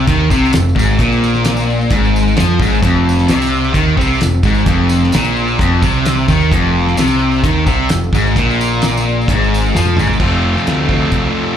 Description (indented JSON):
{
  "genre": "classic rock",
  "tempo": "130 BPM",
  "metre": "4/4",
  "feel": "straight",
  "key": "unclear",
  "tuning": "A4 = 441 Hz",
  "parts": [
    { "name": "sludgy distorted guitar", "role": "riff", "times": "0.0-11.6 s", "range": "F2 to F4", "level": "-16 LUFS", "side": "left 9 dB", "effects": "overdrive, slapback echo" },
    { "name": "sludgy distorted guitar", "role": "riff", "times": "0.0-11.6 s", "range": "F2 to F4", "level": "-17 LUFS", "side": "right 8 dB", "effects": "overdrive, slapback echo" },
    { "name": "growling picked electric bass", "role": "bass", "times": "0.0-11.3 s", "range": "F1 to F2", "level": "-16 LUFS", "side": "equal", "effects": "overdrive" },
    { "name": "damped 70s drum kit", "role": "drums", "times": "0.1-11.2 s", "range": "crash cymbal, hi-hat, kick drum, snare drum, toms", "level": "-17 LUFS", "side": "equal", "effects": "none" },
    { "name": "tambourine", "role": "percussion", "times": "0.1-10.2 s", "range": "none", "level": "-31 LUFS", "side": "right 2 dB", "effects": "none" }
  ],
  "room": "small room ambience",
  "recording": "live gig heard through the venue's PA, club reverb",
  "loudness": "-11 LUFS",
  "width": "side -9 dB against mid",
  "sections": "0.0-10.2 A section; 10.2-11.6 B section",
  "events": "drum fill 9.7-10.2",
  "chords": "0.0 F5; 10.2 F"
}